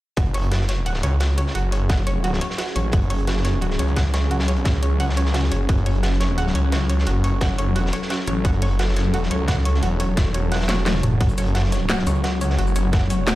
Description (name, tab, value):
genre	dark technical drum and bass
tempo	174 BPM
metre	4/4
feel	straight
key	F# minor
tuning	A4 = 440 Hz
part	swarming drone	sustained chords	1.4-13.4 s	F#3 to A4	-27 LUFS	left 1 dB	built-in reverb, sidechain pumping
part	analog pluck	arpeggios	0.2-13.3 s	F#4 to F#5	-29 LUFS	right 2 dB	chorus, cassette tape, sidechain pumping, dub echo
part	snarling distorted saw bass	bass	0.2-13.4 s	E1 to C#2	-20 LUFS	equal	distortion, tube saturation, sidechain pumping
part	crunchy breakbeat drum kit	drums	0.2-13.4 s	hi-hat, snare drum	-31 LUFS	equal	high-pass filter on hats, high-pass filter on snare, high-pass filter on room
part	drum and bass drum kit	drums	0.2-13.3 s	hi-hat, shaker, snare drum, toms	-26 LUFS	equal	overdrive
part	electronic kick drum	drums	0.2-13.0 s	none	-20 LUFS	equal	overdrive
part	warbly tape-like pad	texture	2.5-13.4 s	F#4 to A5	-37 LUFS	right 1 dB	none
room	digital ambience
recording	played on a big sound system in a bare room, large studio reverb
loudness	-18 LUFS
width	side -16 dB against mid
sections	0.2-13.4 A section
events	drum fill 10.7-11.2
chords	0.2 F#5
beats	| 0.17 0.52 0.86 1.21 | 1.55 1.90 2.24 2.59 | 2.93 3.27 3.62 3.96 | 4.31 4.66 5.00 5.34 | 5.69 6.03 6.38 6.72 | 7.07 7.41 7.76 8.10 | 8.45 8.79 9.14 9.48 | 9.83 10.17 10.52 10.86 | 11.21 11.55 11.90 12.24 | 12.59 12.93 13.28